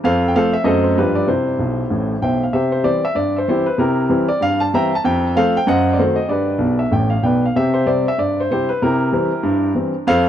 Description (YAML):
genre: jazz, stride piano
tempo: 191 BPM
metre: 4/4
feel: swing 58% on 8ths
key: C major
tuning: A4 = 440 Hz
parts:
  - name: warm baby grand piano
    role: solo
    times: 0.0-10.3 s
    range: A1 to Bb5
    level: -15 LUFS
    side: equal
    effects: tape echo
room: small room ambience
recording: dry, close 1970s-style studio recording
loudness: -15 LUFS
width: side -10 dB against mid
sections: 0.0-2.5 A section; 2.5-10.3 A section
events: grand piano fill 1.6-2.5, 6.6-7.6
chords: 0.0 F; 0.7 F#dim7; 1.0 G7; 1.3 C; 5.0 F; 5.7 F#dim7; 6.3 G; 7.6 C